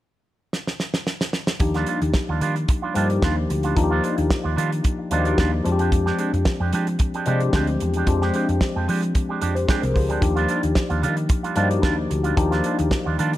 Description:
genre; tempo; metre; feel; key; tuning
disco; 111 BPM; 4/4; straight; unclear; A4 = 440 Hz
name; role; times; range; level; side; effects
damped 70s drum kit; drums; 0.5-13.4 s; hi-hat, kick drum, snare drum; -23 LUFS; equal; none
electric guitar with an envelope filter; accompaniment; 1.6-13.4 s; G3 to G4; -27 LUFS; right 6 dB; none
tine electric piano; accompaniment; 1.6-13.4 s; F3 to D5; -24 LUFS; left 3 dB; phaser
hollow-body short-scale fingered electric bass; bass; 1.6-13.4 s; C2 to F3; -23 LUFS; equal; none
room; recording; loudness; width
light reverb, small room ambience; none; -19 LUFS; side -14 dB against mid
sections
0.0-1.6 A section; 1.6-13.4 B section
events
drum fill 0.5-1.6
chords
0.0 N.C.; 1.6 Ebmaj9; 5.6 Fm69; 10.2 Ebmaj9

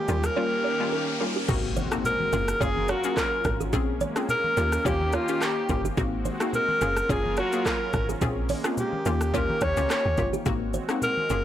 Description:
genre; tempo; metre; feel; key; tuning
afrobeats; 107 BPM; 4/4; swing 55% on 16ths; unclear; A4 = 442 Hz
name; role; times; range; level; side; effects
breathy alto saxophone; melody; 0.0-11.4 s; F4 to Db5; -27 LUFS; equal; ping-pong delay, plate reverb
warm analog pad; sustained chords; 0.0-11.4 s; Eb3 to Bb4; -33 LUFS; right 1 dB; chorus, plate reverb
riser and impact; sound effects; 0.0-3.7 s; none; -36 LUFS; equal; none
hollow square pluck; accompaniment; 0.1-11.4 s; G3 to Ab4; -31 LUFS; left 4 dB; chorus, plate reverb
kalimba; riff; 0.1-11.4 s; G4 to Db5; -34 LUFS; right 6 dB; ping-pong delay
deep log drum bass; bass; 0.1-11.4 s; Gb1 to Eb2; -29 LUFS; equal; none
afro-pop drum kit; drums; 0.1-11.4 s; crash cymbal, handclaps, hi-hat, kick drum, rim click, shaker; -31 LUFS; equal; none
congas; percussion; 1.5-11.3 s; none; -35 LUFS; left 2 dB; none
room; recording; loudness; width
light reverb; blown-out, overdriven recording, overdrive; -23 LUFS; side -11 dB against mid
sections
0.0-1.5 A section; 1.5-11.4 B section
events
riser 0.0-1.5; impact 1.5-3.7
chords
0.1 Eb7; 1.5 Ab7; 2.3 Gbmaj7; 3.7 Bbm7; 4.6 Eb7; 6.0 Ab7; 6.8 Gbmaj7; 8.2 Bbm7; 9.1 Eb7; 10.5 Ab7

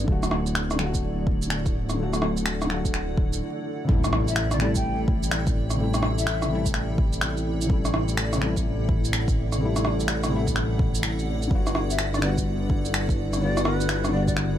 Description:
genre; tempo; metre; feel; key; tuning
future garage; 126 BPM; 4/4; swing 64% on 16ths; A dorian; A4 = 440 Hz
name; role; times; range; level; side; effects
felt-muted upright piano; accompaniment; 0.0-14.6 s; C3 to F#4; -29 LUFS; left 2 dB; sidechain pumping, digital delay
granular cloud pad; sustained chords; 0.0-14.6 s; B3 to G5; -33 LUFS; right 1 dB; built-in reverb, sidechain pumping
dark detuned saw bass; bass; 0.0-14.6 s; D1 to A1; -27 LUFS; equal; sidechain pumping
electronic kick drum; drums; 0.1-14.3 s; none; -25 LUFS; equal; none
electronic rim click, shaker and finger snaps; drums; 0.2-14.5 s; none; -28 LUFS; right 1 dB; none
impact; sound effects; 3.9-5.8 s; none; -34 LUFS; equal; none
breathy mellow jazz flute; melody; 4.3-6.7, 11.9-14.3 s; B4 to G5; -33 LUFS; left 2 dB; vintage 12-bit sampler grit, ping-pong delay
room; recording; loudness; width
light reverb; vinyl crackle; -22 LUFS; side -11 dB against mid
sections
0.0-3.9 A section; 3.9-14.6 B section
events
break 3.4-3.9; impact 3.9-5.8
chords
0.1 D; 3.9 Am7; 11.5 Gmaj7

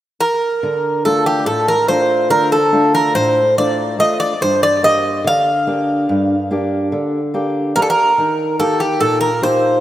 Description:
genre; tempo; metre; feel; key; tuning
greek folk; 143 BPM (eighths); 9/8; straight; D phrygian; A4 = 440 Hz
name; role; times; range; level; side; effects
Greek bouzouki; melody; 0.2-9.8 s; G4 to F5; -14 LUFS; equal; slapback echo
fingerpicked steel-string acoustic guitar; accompaniment; 0.6-9.8 s; G2 to G4; -18 LUFS; equal; none
room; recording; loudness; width
moderate lush hall reverb, RT60 2.8 s; rough home demo mix; -13 LUFS; side -13 dB against mid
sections
0.6-9.8 A section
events
none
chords
0.0 N.C.; 0.6 Dm; 4.4 Gm; 8.2 Eb

